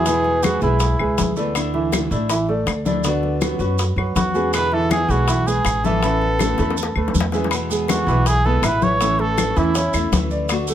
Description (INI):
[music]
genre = latin, Cuban son and guajira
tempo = 161 BPM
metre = 4/4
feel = straight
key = A major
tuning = A4 = 441 Hz
[part]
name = trumpet with cup mute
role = melody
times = 0.0-1.3, 4.2-10.1 s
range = E4 to C#5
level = -22 LUFS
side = right 2 dB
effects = slapback echo
[part]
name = flamenco guitar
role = accompaniment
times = 0.0-10.7 s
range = B2 to F#4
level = -25 LUFS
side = left 3 dB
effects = none
[part]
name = warm grand piano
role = arpeggios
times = 0.0-10.7 s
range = D3 to E5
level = -23 LUFS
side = right 3 dB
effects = none
[part]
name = upright bass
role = bass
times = 0.0-10.7 s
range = A1 to F#2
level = -22 LUFS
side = equal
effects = none
[part]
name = bongos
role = percussion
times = 0.1-10.7 s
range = none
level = -28 LUFS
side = left 5 dB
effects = none
[part]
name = congas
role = percussion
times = 0.1-10.7 s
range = none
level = -26 LUFS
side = left 4 dB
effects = none
[part]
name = maracas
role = percussion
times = 0.1-10.7 s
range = none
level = -31 LUFS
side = right 6 dB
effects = none
[part]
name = claves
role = percussion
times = 0.4-10.7 s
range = none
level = -29 LUFS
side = left 9 dB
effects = none
[sound]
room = light reverb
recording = close, detailed microphones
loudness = -17 LUFS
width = side -10 dB against mid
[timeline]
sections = 0.0-7.5 A section; 7.5-10.7 B section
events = drum fill 6.6-7.5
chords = 0.1 E; 1.6 Dsus2; 3.0 Bmadd9/D; 4.5 E7; 6.0 Aadd9; 7.5 E; 9.0 A